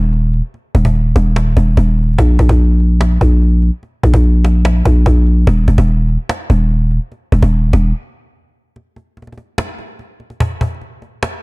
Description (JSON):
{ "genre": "hip hop, trap", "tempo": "146 BPM", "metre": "4/4", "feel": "half-time", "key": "unclear", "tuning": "A4 = 444 Hz", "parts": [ { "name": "growling 808-style bass", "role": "bass", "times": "0.0-7.9 s", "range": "Eb1 to Bb1", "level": "-10 LUFS", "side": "equal", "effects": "none" }, { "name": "cajon", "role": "drums", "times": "0.1-11.3 s", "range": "none", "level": "-18 LUFS", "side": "equal", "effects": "none" } ], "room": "small room ambience", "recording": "dark, warm production", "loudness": "-11 LUFS", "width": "side -26 dB against mid", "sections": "0.0-8.8 A section; 8.8-11.4 B section", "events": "break 7.9-8.8", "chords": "none", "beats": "0.13 | 0.54 0.95 1.36 1.77 | 2.18 2.60 3.01 3.42 | 3.83 4.24 4.65 5.06 | 5.47 5.88 6.29 6.71 | 7.12 7.53 7.94 8.35 | 8.76 9.17 9.58 9.99 | 10.40 10.81 11.22" }